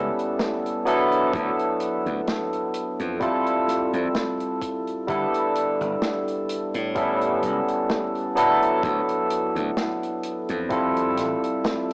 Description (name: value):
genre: vaporwave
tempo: 64 BPM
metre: 4/4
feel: swing 54% on 16ths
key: unclear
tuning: A4 = 440 Hz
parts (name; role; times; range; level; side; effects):
- barky tine electric piano; accompaniment; 0.0-11.9 s; F#3 to A4; -22 LUFS; equal; overdrive, lush chorus, vintage 12-bit sampler grit, analog delay
- slap bass; bass; 0.0-11.3 s; G1 to A2; -29 LUFS; equal; none
- natural country drum kit; drums; 0.2-11.9 s; hi-hat, snare drum; -30 LUFS; equal; cassette tape
- electronic kick drum; drums; 1.3-10.9 s; none; -38 LUFS; equal; cassette tape
room: wet spring reverb, RT60 2.5 s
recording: home recording on cassette, small speaker sound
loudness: -21 LUFS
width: side -32 dB against mid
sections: 0.0-11.9 A section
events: none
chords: 0.0 A9; 0.9 D69; 3.2 Fmaj7; 5.1 G69; 7.0 A9; 8.4 D69; 10.7 Fmaj7